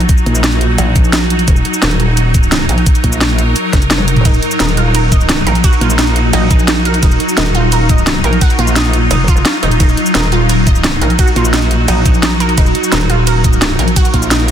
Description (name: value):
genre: dark technical drum and bass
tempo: 173 BPM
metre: 4/4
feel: straight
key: Eb minor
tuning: A4 = 440 Hz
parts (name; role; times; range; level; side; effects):
- swarming drone; sustained chords; 0.0-14.5 s; Gb3 to Bb4; -16 LUFS; equal; built-in reverb, sidechain pumping
- metallic wobble bass; bass; 0.0-13.9 s; Eb1 to Bb1; -14 LUFS; equal; distortion, chorus, overdrive, sidechain pumping
- drum and bass drum kit; drums; 0.0-14.5 s; hi-hat, ride cymbal, shaker, snare drum, toms; -16 LUFS; equal; overdrive
- electronic kick drum; drums; 0.1-14.2 s; none; -11 LUFS; equal; none
- metallic wobble bass; bass; 0.3-0.8, 3.0-3.5, 5.8-6.3, 8.6-9.1, 11.4-11.9, 14.1-14.5 s; Bb1; -13 LUFS; equal; chorus
- wide unison pluck; arpeggios; 4.3-14.4 s; Eb4 to Eb5; -19 LUFS; right 4 dB; phaser, sidechain pumping, ping-pong delay
room: light reverb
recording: dense, heavily limited modern master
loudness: -9 LUFS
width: side -9 dB against mid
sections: 0.0-14.5 A section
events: drum fill 3.9-4.3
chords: 0.0 Ebmadd9